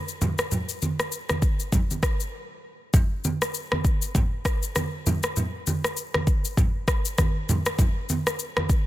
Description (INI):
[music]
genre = afrobeats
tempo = 99 BPM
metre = 4/4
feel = swing 58% on 16ths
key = none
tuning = none
[part]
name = afro-pop drum kit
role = drums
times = 0.1-8.9 s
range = kick drum, rim click, shaker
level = -24 LUFS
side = equal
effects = soft clipping on snare
[part]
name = congas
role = percussion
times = 0.2-8.7 s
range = none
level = -27 LUFS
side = right 1 dB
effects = none
[sound]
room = little or no reverb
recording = dense, heavily limited modern master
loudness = -23 LUFS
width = side -15 dB against mid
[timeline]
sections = 0.0-2.9 A section; 2.9-8.9 B section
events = break 2.3-2.9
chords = none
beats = | 0.51 1.12 1.73 2.33 | 2.94 3.54 4.15 4.76 | 5.36 5.97 6.57 7.18 | 7.79 8.39